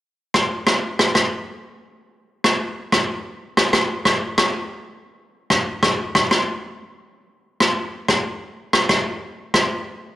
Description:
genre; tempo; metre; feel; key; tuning
dancehall; 93 BPM; 4/4; straight; none; none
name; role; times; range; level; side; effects
rim click; drums; 0.3-9.7 s; none; -17 LUFS; equal; none
room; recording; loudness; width
light reverb; none; -18 LUFS; side -14 dB against mid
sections
0.0-10.2 A section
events
none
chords
none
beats
| 0.02 0.67 1.31 1.96 | 2.60 3.25 3.89 4.54 | 5.18 5.83 6.47 7.12 | 7.76 8.41 9.05

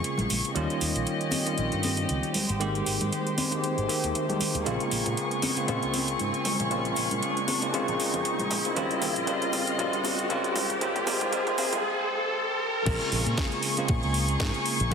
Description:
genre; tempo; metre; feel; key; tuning
nu-disco, nu disco; 117 BPM; 4/4; swing 56% on 16ths; Bb dorian; A4 = 435 Hz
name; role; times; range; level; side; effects
bell-like tine electric piano; accompaniment; 0.0-14.9 s; C3 to G4; -30 LUFS; equal; medium stereo tremolo, sidechain pumping, dub echo
dark studio string section; sustained chords; 0.0-14.9 s; Ab3 to Db6; -32 LUFS; left 2 dB; sidechain pumping
house drum kit; drums; 0.0-14.9 s; crash cymbal, hi-hat, ride cymbal, snare drum, toms; -32 LUFS; right 1 dB; high-pass filter on hats, high-pass filter on toms, high-pass filter on cymbals, high-pass filter on snare, high-pass filter on room
cabasa and congas; percussion; 0.0-11.8 s; none; -36 LUFS; left 1 dB; none
riser; sound effects; 2.5-12.9 s; none; -34 LUFS; equal; none
fingered electric bass with an envelope filter; bass; 0.2-14.9 s; Ab1 to Bb2; -32 LUFS; equal; none
electronic kick drum; drums; 12.9-14.9 s; none; -28 LUFS; equal; overdrive
room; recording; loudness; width
wet echo chamber reverb, RT60 2.4 s; heavily compressed radio sound, multiband compression, high-pass filter; -25 LUFS; side -6 dB against mid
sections
0.0-12.9 A section; 12.9-14.9 B section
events
build-up 0.0-12.9; riser 2.5-12.9; drum fill 4.7-11.8; drop 12.9-14.9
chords
0.0 Bbm7; 0.6 Eb7; 2.4 Abmaj7; 4.7 Bbm7; 8.8 Eb7; 10.6 Abmaj7; 12.9 Bbm7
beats
0.04 | 0.56 1.07 1.58 2.10 | 2.61 3.12 3.63 4.15 | 4.66 5.17 5.68 6.20 | 6.71 7.22 7.74 8.25 | 8.76 9.28 9.79 10.30 | 10.81 11.33 11.84 12.35 | 12.86 13.38 13.89 14.40 | 14.92

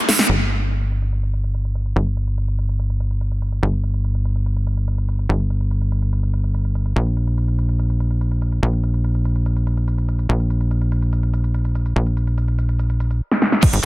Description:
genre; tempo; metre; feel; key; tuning
psychedelic trance; 144 BPM; 4/4; straight; G minor; A4 = 442 Hz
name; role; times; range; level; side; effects
big-room dance drum kit; drums; 0.1-13.8 s; bongos, crash cymbal, hi-hat, snare drum; -19 LUFS; equal; overdrive, low-pass filter on hats, low-pass filter on perc, low-pass filter on snare, low-pass filter on cymbals, low-pass filter on room
tight sequencer bass; bass; 0.3-13.8 s; G1 to Bb1; -18 LUFS; equal; none
electronic kick drum; drums; 13.6-13.7 s; none; -14 LUFS; equal; overdrive
room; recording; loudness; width
little or no reverb; dense, heavily limited modern master; -18 LUFS; side -19 dB against mid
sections
0.3-13.6 A section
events
break 0.0; drum fill 0.0, 13.3-13.6; band accent 0.2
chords
none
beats
| 0.29 0.71 1.13 1.54 | 1.96 2.38 2.79 3.21 | 3.63 4.04 4.46 4.88 | 5.29 5.71 6.13 6.54 | 6.96 7.38 7.79 8.21 | 8.63 9.04 9.46 9.88 | 10.29 10.71 11.13 11.54 | 11.96 12.38 12.79 13.21 | 13.63

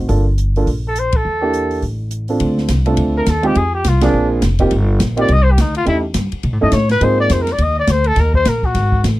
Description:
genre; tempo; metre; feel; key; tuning
jazz, small-group swing and bop; 208 BPM; 4/4; swing 60% on 8ths; unclear; A4 = 436 Hz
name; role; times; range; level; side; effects
warm upright piano; accompaniment; 0.0-7.4 s; Ab3 to A4; -18 LUFS; right 2 dB; none
upright bass; bass; 0.0-9.2 s; F1 to B2; -16 LUFS; equal; none
open jazz drum kit; drums; 0.1-9.1 s; hi-hat, kick drum, ride cymbal, snare drum; -21 LUFS; equal; none
warm trumpet; melody; 0.9-9.0 s; D4 to Eb5; -18 LUFS; left 2 dB; none
room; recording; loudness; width
little or no reverb; dry, close 1970s-style studio recording; -13 LUFS; side -17 dB against mid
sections
0.0-2.4 A section; 2.4-9.2 B section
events
band accent 1.1, 4.0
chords
0.1 Gm7; 1.2 Em7b5; 1.8 Amadd11; 2.4 Dm7; 3.6 Fm; 4.1 Bb7; 4.7 Eb6; 5.9 A7#11; 7.0 Ab6; 8.2 Eb5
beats
| 0.09 0.38 0.67 0.95 | 1.24 1.53 1.82 2.11 | 2.40 2.69 2.98 3.27 | 3.55 3.84 4.13 4.42 | 4.71 5.00 5.28 5.57 | 5.86 6.15 6.44 6.73 | 7.01 7.30 7.59 7.88 | 8.17 8.46 8.75 9.04

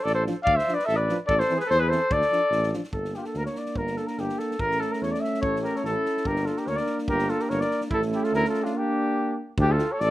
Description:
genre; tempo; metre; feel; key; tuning
balkan folk, Balkan brass band; 145 BPM; 2/4; straight; G dorian sharp4; A4 = 440 Hz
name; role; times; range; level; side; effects
mellow flugelhorn; melody; 0.0-10.1 s; F4 to F5; -25 LUFS; left 1 dB; slapback echo
mellow trumpet; second line; 0.0-2.7, 5.4-10.1 s; D4 to D5; -33 LUFS; right 4 dB; slapback echo
mellow tuba; bass; 0.1-10.1 s; G1 to E2; -28 LUFS; equal; none
natural country drum kit; percussion; 0.1-10.1 s; kick drum, snare drum; -35 LUFS; equal; none
dark euphonium; accompaniment; 0.3-9.9 s; C4 to F4; -33 LUFS; left 3 dB; slapback echo
mellow euphonium; accompaniment; 0.3-9.9 s; E3 to Bb3; -32 LUFS; right 4 dB; slapback echo
room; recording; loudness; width
little or no reverb; recorded outdoors, with no room sound; -23 LUFS; side -15 dB against mid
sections
0.0-2.9 A section; 2.9-9.6 B section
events
break 8.7-9.6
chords
0.0 Dm; 1.3 Am; 2.1 Dm; 2.9 Gm; 4.6 A; 6.3 Gm; 7.9 A; 8.7 Gm; 9.6 Dm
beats
0.06 | 0.47 0.88 | 1.29 1.70 | 2.11 2.52 | 2.94 3.35 | 3.77 4.18 | 4.60 5.01 | 5.43 5.84 | 6.26 6.67 | 7.09 7.50 | 7.92 8.33 | 8.75 9.16 | 9.57 9.98

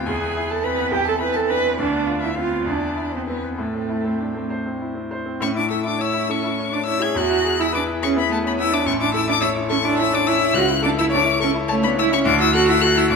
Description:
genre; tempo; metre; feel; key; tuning
quick classical-period movement for piano trio; 70 BPM (dotted quarters); 6/8; rubato; A minor, A major from 5.4 s; A4 = 440 Hz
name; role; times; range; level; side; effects
warm violin; melody; 0.0-13.2 s; A4 to G#6; -23 LUFS; left 7 dB; none
bright concert grand piano; accompaniment; 0.0-13.2 s; A1 to C#5; -22 LUFS; left 3 dB; none
dark cello; second line; 0.1-13.2 s; A3 to B4; -22 LUFS; right 5 dB; none
room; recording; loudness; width
wet recital hall reverb, RT60 1.7 s; minimal, uncompressed stereo recording; -18 LUFS; side -5 dB against mid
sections
0.0-5.4 A section; 5.4-13.2 A section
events
none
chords
0.1 E; 0.9 C/E; 1.8 Bdim/D; 2.7 E5; 3.6 Am; 5.4 A; 7.2 E; 8.9 A; 10.6 A/C#; 12.3 D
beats
| 0.08 0.93 | 1.80 2.67 | 3.58 4.50 | 5.41 6.29 | 7.16 8.02 | 8.87 9.71 | 10.56 11.41 | 12.27 13.11

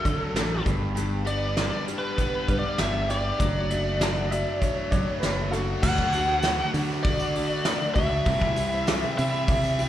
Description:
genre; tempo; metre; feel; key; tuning
folk rock and heartland rock; 99 BPM; 4/4; straight; D major; A4 = 445 Hz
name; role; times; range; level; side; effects
biting lead guitar; melody; 0.0-9.9 s; A4 to F#5; -28 LUFS; equal; overdrive, slapback echo, analog delay
picked steel-string acoustic guitar; accompaniment; 0.0-9.9 s; G2 to G4; -34 LUFS; left 5 dB; slapback echo
biting overdriven guitar; riff; 0.0-9.9 s; G2 to G4; -32 LUFS; right 1 dB; spring reverb, slapback echo
fingered electric bass; bass; 0.1-9.9 s; F#1 to D3; -28 LUFS; equal; none
soft brush drum kit; drums; 0.1-9.9 s; crash cymbal, hi-hat, kick drum, snare drum; -27 LUFS; equal; none
clear upright piano; second line; 4.0-5.8 s; A4 to A5; -35 LUFS; right 2 dB; slapback echo
tambourine; percussion; 5.8-9.9 s; none; -46 LUFS; right 2 dB; none
room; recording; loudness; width
little or no reverb; live gig heard through the venue's PA, recital hall reverb; -23 LUFS; side -12 dB against mid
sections
0.0-5.8 A section; 5.8-9.9 B section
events
none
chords
0.0 D; 0.7 G; 3.4 D/F#; 5.8 D; 8.3 C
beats
0.36 | 0.97 1.58 2.19 2.79 | 3.40 4.01 4.62 5.23 | 5.84 6.44 7.05 7.66 | 8.26 8.87 9.48

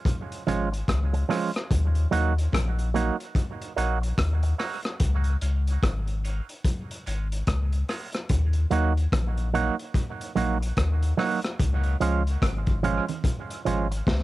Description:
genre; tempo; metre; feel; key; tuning
dub reggae; 73 BPM; 4/4; swing 61% on 16ths; Eb minor; A4 = 440 Hz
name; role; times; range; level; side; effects
crunchy breakbeat drum kit; drums; 0.1-14.2 s; hi-hat, kick drum, rim click, snare drum; -28 LUFS; left 1 dB; none
congas; percussion; 0.1-14.2 s; none; -37 LUFS; right 6 dB; none
electric guitar with an envelope filter; accompaniment; 0.5-14.0 s; F3 to Gb4; -28 LUFS; right 6 dB; high-pass filter, cassette tape, dub echo
warm sub bass; bass; 0.5-14.2 s; Ab1 to Eb2; -25 LUFS; left 1 dB; none
room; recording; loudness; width
light reverb; home recording on cassette; -23 LUFS; side -17 dB against mid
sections
0.0-14.2 A section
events
filter sweep 1.7-8.3; drum fill 14.1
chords
0.0 Db; 1.7 Ebm; 5.0 Db; 8.3 Ebm; 11.6 Db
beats
0.06 0.88 | 1.71 2.53 3.35 4.18 | 5.00 5.83 6.65 7.48 | 8.30 9.13 9.95 10.77 | 11.60 12.42 13.24 14.07

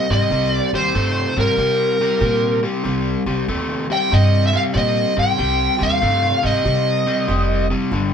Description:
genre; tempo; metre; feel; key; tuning
blues; 95 BPM; 4/4; swing 66% on 8ths; C minor; A4 = 438 Hz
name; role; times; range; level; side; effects
smooth overdriven lead guitar; melody; 0.0-7.7 s; Bb4 to G5; -18 LUFS; right 1 dB; none
overdriven electric guitar; riff; 0.0-8.1 s; G2 to A3; -21 LUFS; left 2 dB; none
upright bass; bass; 0.1-8.1 s; F1 to C3; -21 LUFS; equal; none
room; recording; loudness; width
moderate small room ambience, RT60 0.5 s; band playing live in one room; -16 LUFS; side -7 dB against mid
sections
0.0-8.1 A section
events
none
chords
0.0 Cm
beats
| 0.32 0.95 1.58 2.22 | 2.85 3.48 4.12 4.75 | 5.39 6.02 6.65 7.29 | 7.92

